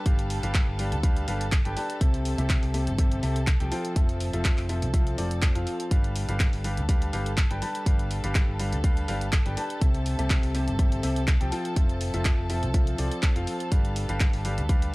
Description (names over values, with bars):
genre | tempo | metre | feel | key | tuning
piano house | 123 BPM | 4/4 | swing 53% on 16ths | G mixolydian | A4 = 441 Hz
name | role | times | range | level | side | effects
muted studio violin section | sustained chords | 0.0-14.9 s | A4 to A5 | -39 LUFS | equal | sidechain pumping
bright baby grand piano | riff | 0.0-14.9 s | C3 to A5 | -31 LUFS | left 1 dB | sidechain pumping, tape echo
hollow-body short-scale fingered electric bass | bass | 0.1-14.9 s | F1 to D2 | -29 LUFS | equal | sidechain pumping
electronic kick drum | drums | 0.1-14.8 s | none | -23 LUFS | equal | none
punchy analog drum machine | drums | 0.1-14.9 s | handclaps, hi-hat | -34 LUFS | equal | none
room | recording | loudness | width
small room ambience | dry, gritty hardware recording, cassette tape | -23 LUFS | side -22 dB against mid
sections
0.0-14.9 A section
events
none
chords
0.0 G7; 2.0 C6; 3.7 Fmaj7; 5.9 G7; 9.8 C6; 11.5 Fmaj7; 13.7 G7